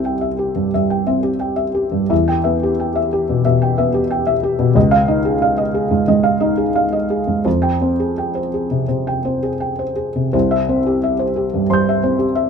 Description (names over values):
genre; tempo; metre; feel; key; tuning
neoclassical minimalist piano; 83-92 BPM; 4/4; rubato; C major; A4 = 440 Hz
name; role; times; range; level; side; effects
felt-muted upright piano; solo; 0.0-12.5 s; C2 to G6; -15 LUFS; equal; none
room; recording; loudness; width
light reverb; minimal, uncompressed stereo recording; -15 LUFS; side -6 dB against mid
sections
0.0-12.5 A section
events
none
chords
0.0 C; 2.1 Em; 4.8 Dbadd9; 7.5 Fmadd9; 10.3 C